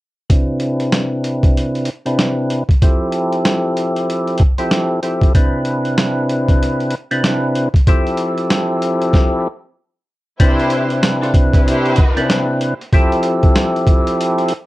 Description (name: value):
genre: hip hop, boom-bap hip-hop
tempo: 95 BPM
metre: 4/4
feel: swing 61% on 16ths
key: C major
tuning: A4 = 440 Hz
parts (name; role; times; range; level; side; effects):
- percussive tonewheel organ; accompaniment; 0.3-14.5 s; C3 to B4; -17 LUFS; equal; overdrive, slow rotary speaker, high-pass filter, low-pass filter
- boom bap sampler-style drum kit; drums; 0.3-14.7 s; hi-hat, kick drum, snare drum; -14 LUFS; equal; none
- rich studio string section; stabs; 10.4-12.3 s; D4 to C5; -21 LUFS; equal; high-pass filter, low-pass filter, ping-pong delay
room: light reverb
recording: worn, warbling old tape, cassette tape, warbly pitch drift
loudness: -13 LUFS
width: side -17 dB against mid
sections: 0.3-10.4 A section; 10.4-14.7 B section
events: filter sweep on tonewheel organ 0.3-10.4; stop 9.1-10.4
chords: 0.3 Cmaj9; 2.8 Fmaj9; 5.3 Cmaj9; 7.9 Fmaj9; 10.4 Cmaj9; 12.9 Fmaj9